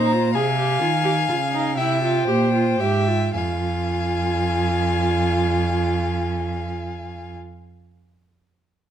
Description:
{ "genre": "classical, baroque-style fugue for string quartet", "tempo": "36-45 BPM (dotted quarters)", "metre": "6/8", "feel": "straight", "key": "F minor", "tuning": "A4 = 440 Hz", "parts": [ { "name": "dark violin", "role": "melody", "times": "0.0-7.3 s", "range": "G5 to Bb5", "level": "-26 LUFS", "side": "left 7 dB", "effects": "none" }, { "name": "warm violin", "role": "second line", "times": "0.0-7.3 s", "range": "C5 to F5", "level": "-27 LUFS", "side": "left 2 dB", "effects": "none" }, { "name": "warm viola", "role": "accompaniment", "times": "0.0-7.3 s", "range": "Eb4 to Ab4", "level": "-25 LUFS", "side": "right 2 dB", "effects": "none" }, { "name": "rich cello", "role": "bass", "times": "0.0-7.3 s", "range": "F2 to Eb3", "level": "-23 LUFS", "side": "right 3 dB", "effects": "none" } ], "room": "light reverb", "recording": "dark, warm production", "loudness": "-19 LUFS", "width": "side -10 dB against mid", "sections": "0.0-3.3 A section; 3.3-6.7 B section", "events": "slowing down 0.0-3.3", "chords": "0.3 Fm/C; 1.8 C7; 3.3 Fm", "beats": "| 0.35 1.77 | 3.35 5.00" }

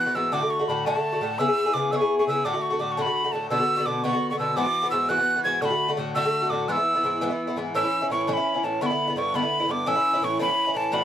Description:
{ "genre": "celtic folk", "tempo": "113 BPM (dotted quarters)", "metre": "6/8", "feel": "straight", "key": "E mixolydian, A mixolydian from 7.7 s", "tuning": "A4 = 441 Hz", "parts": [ { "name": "breathy mellow mid whistle", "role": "melody", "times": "0.0-11.0 s", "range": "A5 to G#6", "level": "-24 LUFS", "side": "right 2 dB", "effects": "none" }, { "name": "Irish bouzouki", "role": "accompaniment", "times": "0.0-11.0 s", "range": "G2 to G#4", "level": "-25 LUFS", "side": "left 1 dB", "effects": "none" } ], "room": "light reverb", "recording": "dark, warm production", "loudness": "-22 LUFS", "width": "side -10 dB against mid", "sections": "0.0-7.7 A section; 7.7-11.0 B section", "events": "none", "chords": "0.3 D; 1.4 E6; 2.5 D; 3.5 Bm; 4.6 Eadd9; 5.6 D; 6.7 E; 7.7 A; 8.8 G6; 9.9 A", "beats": "| 0.33 0.86 | 1.39 1.92 | 2.45 2.98 | 3.51 4.04 | 4.57 5.10 | 5.63 6.16 | 6.69 7.22 | 7.75 8.27 | 8.80 9.33 | 9.86 10.39 | 10.92" }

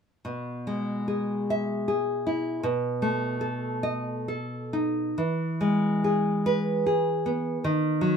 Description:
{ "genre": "romantic piece for solo classical guitar", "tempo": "42-53 BPM (dotted quarters)", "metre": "6/8", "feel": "rubato", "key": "E major", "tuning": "A4 = 437 Hz", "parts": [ { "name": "nylon-string guitar", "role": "solo", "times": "0.2-8.2 s", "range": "B2 to E5", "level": "-25 LUFS", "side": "equal", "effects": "none" } ], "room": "light reverb", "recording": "minimal, uncompressed stereo recording", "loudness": "-25 LUFS", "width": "side -6 dB against mid", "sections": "0.2-5.2 A section; 5.2-8.2 B section", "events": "none", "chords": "0.2 E/B; 2.6 B7; 5.2 E; 7.6 D#m", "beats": "| 0.24 1.48 | 2.63 3.83 | 5.18 6.44 | 7.61" }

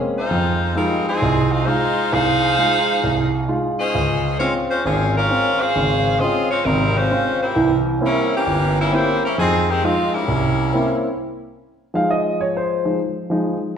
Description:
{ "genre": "jazz", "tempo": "132 BPM", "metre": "4/4", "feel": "swing 68% on 8ths", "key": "F minor", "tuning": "A4 = 440 Hz", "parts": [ { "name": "warm grand piano", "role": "accompaniment", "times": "0.0-13.6 s", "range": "G1 to F5", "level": "-19 LUFS", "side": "right 1 dB", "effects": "none" }, { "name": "edgy saxophone section", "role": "melody", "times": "0.2-11.1 s", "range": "Eb3 to F5", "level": "-19 LUFS", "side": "left 1 dB", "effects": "none" } ], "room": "wet recital hall reverb, RT60 1.2 s", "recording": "recorded in a church or concert hall", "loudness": "-16 LUFS", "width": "side -8 dB against mid", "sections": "0.0-11.2 A section; 11.2-13.8 B section", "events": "grand piano solo 11.2-13.8", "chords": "0.3 Fm7; 3.9 Dbmaj7; 7.6 C7b9; 9.4 Fm7; 10.3 C7b9; 11.2 Fm7", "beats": "| 0.30 0.76 1.21 1.67 | 2.12 2.57 3.03 3.48 | 3.93 4.39 4.84 5.29 | 5.75 6.20 6.65 7.11 | 7.56 8.01 8.47 8.92 | 9.37 9.83 10.28 10.73 | 11.19 11.64 12.09 12.55 | 13.00 13.46" }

